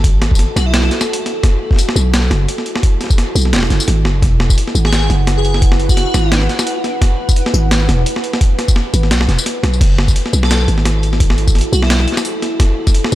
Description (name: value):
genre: half-time drum and bass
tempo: 172 BPM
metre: 4/4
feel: swing 56% on 16ths, half-time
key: F# minor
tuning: A4 = 439 Hz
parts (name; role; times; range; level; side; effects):
- deep dark ambient pad; sustained chords; 0.0-13.2 s; E4 to F#5; -23 LUFS; equal; chorus, built-in reverb, sidechain pumping
- growling 808-style bass; bass; 0.0-13.2 s; E1 to B1; -14 LUFS; equal; none
- boom bap sampler-style drum kit; drums; 0.0-13.2 s; crash cymbal, hi-hat, snare drum, tambourine; -18 LUFS; equal; none
- electronic kick drum; drums; 0.0-12.9 s; none; -12 LUFS; equal; none
- airy dreamy lead; melody; 0.6-0.9, 4.8-6.4, 10.4-12.1 s; E4 to A4; -24 LUFS; equal; chorus, tape echo
room: digital ambience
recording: dry, gritty hardware recording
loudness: -12 LUFS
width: side -15 dB against mid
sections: 0.0-13.2 A section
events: none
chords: 0.0 F#m7; 4.2 E; 9.8 F#m7